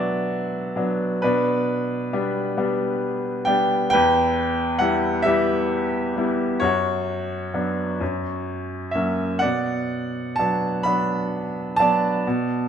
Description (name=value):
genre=classical, lyrical solo piano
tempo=44 BPM (dotted quarters)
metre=6/8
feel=uneven beats, rubato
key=B minor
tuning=A4 = 440 Hz
part: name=bright grand piano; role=solo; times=0.0-12.7 s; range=E2 to B5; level=-20 LUFS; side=equal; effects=none
room=moderate recital hall reverb, RT60 1.8 s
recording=minimal, uncompressed stereo recording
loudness=-20 LUFS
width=side -8 dB against mid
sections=0.0-12.7 A section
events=none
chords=0.0 Bm; 1.2 G/B; 3.9 Em; 6.6 Bm/F#; 8.0 F#; 9.4 Bm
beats=| 1.23 2.59 | 3.93 5.27 | 6.63 8.01 | 9.43 10.85 | 12.25